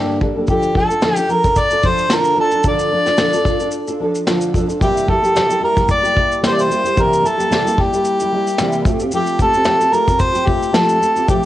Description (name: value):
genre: acoustic pop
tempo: 111 BPM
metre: 4/4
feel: swing 55% on 16ths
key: unclear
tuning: A4 = 440 Hz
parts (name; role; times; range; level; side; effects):
- mellow harmonica; melody; 0.0-11.5 s; G4 to D5; -16 LUFS; equal; none
- nylon-string guitar; accompaniment; 0.0-11.5 s; G2 to A4; -19 LUFS; equal; double-tracked left and right, cassette tape
- vintage brush drum kit; drums; 0.2-11.4 s; kick drum, shaker, snare drum; -19 LUFS; equal; cassette tape
room: light reverb, small room ambience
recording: home recording on cassette, nothing above 10.5 kHz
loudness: -13 LUFS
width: side -14 dB against mid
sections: 0.0-11.5 A section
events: none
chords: 0.5 Dm; 4.8 C7; 8.9 Fadd9